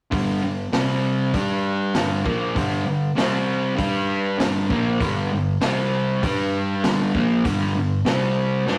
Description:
garage rock duo or trio; 98 BPM; 4/4; straight; A4 = 440 Hz
fuzz guitar; riff; 0.1-8.8 s; G2 to G4; -23 LUFS; equal; distortion
crunchy breakbeat drum kit; drums; 0.1-8.8 s; hi-hat, kick drum, snare drum; -28 LUFS; equal
moderate studio reverb, RT60 0.5 s; rough rehearsal-room recording, warm saturation; -22 LUFS; mono
0.1-8.8 A section
0.1 G5; 0.7 C5; 1.3 G5; 3.2 C5; 3.8 G5; 5.6 C5; 6.2 G5; 8.1 C5

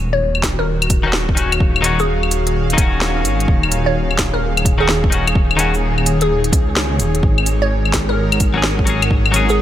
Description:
future garage; 128 BPM; 4/4; swing 65% on 16ths; Eb minor; A4 = 440 Hz
airy breathy pad; sustained chords; 0.0-9.6 s; Eb3 to Gb5; -23 LUFS; right 1 dB; chorus, vintage 12-bit sampler grit, sidechain pumping
dark detuned saw bass; bass; 0.0-9.6 s; Eb1 to Db2; -19 LUFS; equal; sidechain pumping
wind-like tuned noise texture; texture; 1.7-9.6 s; Ab4; -30 LUFS; right 4 dB; built-in reverb
glassy wavetable pluck; melody; 0.1-9.6 s; Ab4 to Db5; -23 LUFS; equal; chorus, tape echo
organic electronic drum kit; drums; 0.3-9.6 s; cabasa, claves, hi-hat, snare drum; -20 LUFS; left 2 dB
electronic kick drum; drums; 0.4-9.2 s; -17 LUFS; equal
twelve-string electric guitar; accompaniment; 1.0-9.5 s; Eb3 to Ab4; -21 LUFS; left 4 dB; sidechain pumping, analog delay
light reverb, digital ambience; -14 LUFS; side -12 dB against mid
0.0-9.6 A section
0.0 Ebm7; 7.2 Ab7sus4

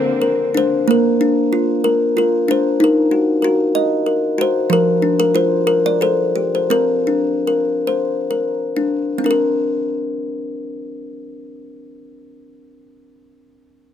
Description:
children's music, lullaby; 60-95 BPM; 3/4; straight; Bb major; A4 = 440 Hz
kalimba; melody; 0.0-13.2 s; F3 to Eb5; -15 LUFS; left 1 dB
muted studio string section; sustained chords; 0.0-0.9 s; D3 to C4; -26 LUFS; equal
light reverb; close, detailed microphones; -15 LUFS; side -9 dB against mid
0.9-9.2 A section; 9.2-13.9 B section
slowing down 4.7-9.2
0.0 Bbadd9; 0.9 Bb; 2.8 Ebm; 4.7 Bb/F; 6.0 Gsus24; 6.7 Bbadd9

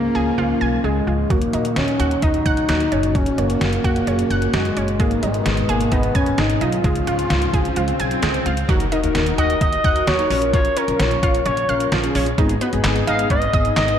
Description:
synth-pop; 130 BPM; 4/4; straight; Eb minor; A4 = 440 Hz
expressive synth lead; melody; 0.0-14.0 s; Ab3 to F5; -21 LUFS; left 1 dB; chorus, tape echo
phased analog pad; sustained chords; 0.0-8.7 s; Ab2 to Gb4; -26 LUFS; equal; phaser, chorus
upright bass; bass; 0.0-13.9 s; Gb1 to Eb2; -23 LUFS; equal
analog pluck; arpeggios; 0.1-13.9 s; Eb3 to Ab5; -25 LUFS; right 4 dB; chorus, tape echo
detuned 8-bit digital drum machine; drums; 1.3-14.0 s; handclaps, hi-hat, kick drum, snare drum; -22 LUFS; equal; overdrive
swell and impact; sound effects; 7.1-10.5 s; -28 LUFS; left 1 dB
mellow synth brass; accompaniment; 8.7-14.0 s; Cb4 to Cb5; -24 LUFS; left 3 dB; chorus
moderate lush hall reverb, RT60 1.9 s, digital ambience; dreamy mix soaked in reverb; -16 LUFS; side -9 dB against mid
0.0-8.7 A section; 8.7-14.0 B section
swell 7.1-8.7; impact 8.7-10.5
0.0 Db; 1.3 Ebm; 2.9 Gb; 5.0 Abm; 6.8 Db; 8.7 Ebm; 10.3 Bbm; 12.4 Abm

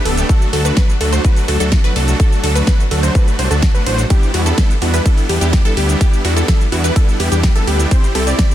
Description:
EDM, festival progressive house; 126 BPM; 4/4; straight; A4 = 440 Hz
wide unison pluck; arpeggios; 0.0-8.5 s; F#4 to D5; -22 LUFS; left 1 dB; sidechain pumping, ping-pong delay
supersaw chords; riff; 0.0-8.5 s; F#3 to D5; -19 LUFS; equal; cassette tape, sidechain pumping, ping-pong delay
fat analog bass; bass; 0.1-8.3 s; D1 to E2; -16 LUFS; equal; sidechain pumping
pop drum kit; drums; 0.1-8.5 s; hi-hat, ride cymbal, shaker, snare drum; -23 LUFS; equal
electronic kick drum; drums; 0.3-8.5 s; -13 LUFS; equal
little or no reverb; dense, heavily limited modern master; -12 LUFS; side -12 dB against mid
0.0-8.5 A section
0.3 D; 4.1 Em7; 7.9 C

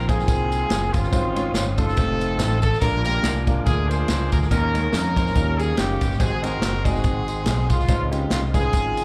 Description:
uptempo gospel; 142 BPM; 4/4; swing 55% on 8ths; Ab major; A4 = 440 Hz
clear horn section; melody; 0.0-9.0 s; Ab3 to C5; -27 LUFS; equal; slapback echo
clear concert grand piano; accompaniment; 0.0-9.0 s; Ab2 to Eb5; -31 LUFS; equal
mellow tonewheel organ; sustained chords; 0.0-9.0 s; C4 to Eb6; -39 LUFS; equal
modern bright fingered electric bass; bass; 0.0-9.0 s; F1 to F2; -26 LUFS; equal
swinging big-band drum kit; drums; 0.1-9.0 s; kick drum, ride cymbal, snare drum; -27 LUFS; equal
tambourine and handclaps; percussion; 0.1-9.0 s; -38 LUFS; equal
light reverb; live gig heard through the venue's PA, club reverb; -21 LUFS; mono
0.0-9.0 A section
0.0 Ab69; 1.1 Dbmaj9/Ab; 2.0 F7; 2.8 Bb7; 4.5 Eb7sus4; 5.4 Eb9; 6.2 Ab7; 7.9 Dbmaj9

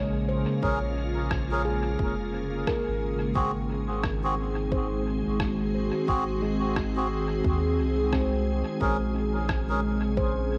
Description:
ambient dub; 88 BPM; 4/4; swing 60% on 16ths; Bb minor; A4 = 443 Hz
soft additive organ-like pad; sustained chords; 0.0-10.6 s; Db3 to C5; -31 LUFS; equal; ensemble chorus, built-in reverb, cassette tape
handpan; arpeggios; 0.0-10.6 s; Ab3 to C5; -37 LUFS; equal; cassette tape, analog delay
soft dub sub bass; bass; 0.0-10.6 s; F1 to Eb2; -33 LUFS; equal
melodica; stabs; 0.6-9.8 s; C4 to Bb4; -35 LUFS; equal; cassette tape, dub echo
electronic kick drum; drums; 0.6-10.3 s; -34 LUFS; equal; overdrive, cassette tape
electronic rim click; drums; 1.3-9.7 s; -41 LUFS; equal; cassette tape, dub echo
moderate lush hall reverb, RT60 2.0 s; home recording on cassette; -27 LUFS; mono
0.0-10.6 A section
0.0 Bbm7; 3.4 Ab7; 8.8 Bbm7

